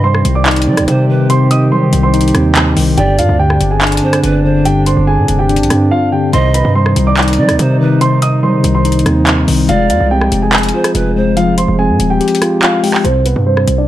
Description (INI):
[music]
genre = hip hop, drill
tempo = 143 BPM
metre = 4/4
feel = half-time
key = C minor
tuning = A4 = 440 Hz
[part]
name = dark grand piano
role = melody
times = 0.0-13.9 s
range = B3 to Eb6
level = -17 LUFS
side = right 2 dB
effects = low-pass filter
[part]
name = mellow tine electric piano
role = accompaniment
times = 0.0-13.9 s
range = G2 to Ab4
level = -13 LUFS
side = left 2 dB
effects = auto-pan, low-pass filter
[part]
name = mellow brass ensemble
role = sustained chords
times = 0.0-13.0 s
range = D3 to G4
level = -20 LUFS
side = right 2 dB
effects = none
[part]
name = distorted 808-style bass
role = bass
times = 0.0-13.9 s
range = Eb1 to G3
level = -15 LUFS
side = right 1 dB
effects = distortion
[part]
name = drill drum kit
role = drums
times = 0.1-13.8 s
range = handclaps, hi-hat, rim click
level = -16 LUFS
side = equal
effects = none
[part]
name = breathy large pan pipes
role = second line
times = 0.7-11.4 s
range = B4 to Eb5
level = -20 LUFS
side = right 2 dB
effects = digital delay
[sound]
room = studio reverb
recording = dark, warm production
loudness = -9 LUFS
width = side -13 dB against mid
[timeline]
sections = 0.0-13.0 A section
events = drums muted 5.9-6.3; kick muted 12.2-13.0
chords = 0.0 Cm; 3.0 Gsus4; 6.3 Cm; 9.7 Fmadd9; 13.0 C5